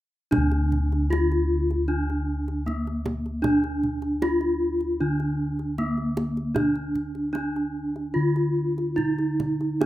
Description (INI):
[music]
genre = Javanese gamelan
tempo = 77 BPM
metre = 4/4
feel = straight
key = unclear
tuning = A4 = 440 Hz
[part]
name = gamelan-type bronze metallophone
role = melody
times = 0.3-9.9 s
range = Bb3 to F4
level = -25 LUFS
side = equal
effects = none
[part]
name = gamelan-type bossed gongs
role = bass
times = 0.3-9.9 s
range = D2 to Eb4+35c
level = -26 LUFS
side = equal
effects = none
[part]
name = kendang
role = percussion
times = 0.3-9.9 s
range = none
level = -30 LUFS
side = right 2 dB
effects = none
[sound]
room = moderate studio reverb, RT60 0.6 s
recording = rough home demo mix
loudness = -23 LUFS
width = side -14 dB against mid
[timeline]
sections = 0.3-9.9 A section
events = none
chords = none